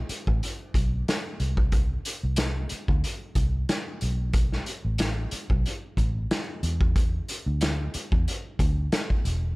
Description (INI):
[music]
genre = lush 1970s-style soul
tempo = 92 BPM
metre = 4/4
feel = swing 54% on 16ths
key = unclear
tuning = A4 = 440 Hz
[part]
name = vintage muted fingered electric bass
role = bass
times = 0.0-9.5 s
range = E1 to E2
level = -27 LUFS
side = equal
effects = none
[part]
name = vintage drum kit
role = drums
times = 0.1-9.4 s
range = hi-hat, kick drum, snare drum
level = -26 LUFS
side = equal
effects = none
[sound]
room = little or no reverb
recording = none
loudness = -24 LUFS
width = side -24 dB against mid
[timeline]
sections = 0.0-9.6 A section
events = none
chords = none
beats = 0.42 1.07 | 1.73 2.38 3.04 3.69 | 4.34 5.00 5.65 6.30 | 6.96 7.61 8.27 8.92